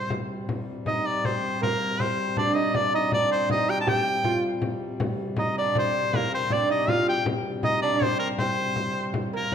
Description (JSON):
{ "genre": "medieval dance", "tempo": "159 BPM", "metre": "3/4", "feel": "straight", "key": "C minor", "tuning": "A4 = 440 Hz", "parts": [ { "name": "edgy shawm", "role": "melody", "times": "0.0-9.5 s", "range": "Bb4 to A5", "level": "-26 LUFS", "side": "left 2 dB", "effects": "none" }, { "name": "lute", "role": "second line", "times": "0.0-9.5 s", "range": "Bb3 to G4", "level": "-28 LUFS", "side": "right 3 dB", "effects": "none" }, { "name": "pedal harmonium", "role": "drone", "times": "0.0-9.5 s", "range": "C3 to G3", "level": "-33 LUFS", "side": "equal", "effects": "none" }, { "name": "frame drum", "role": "percussion", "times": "0.1-9.5 s", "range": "none", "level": "-30 LUFS", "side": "left 2 dB", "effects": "none" } ], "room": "wet recital hall reverb, RT60 1.6 s", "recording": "minimal, uncompressed stereo recording", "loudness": "-23 LUFS", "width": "side -8 dB against mid", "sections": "0.5-9.5 A section", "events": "none", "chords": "none" }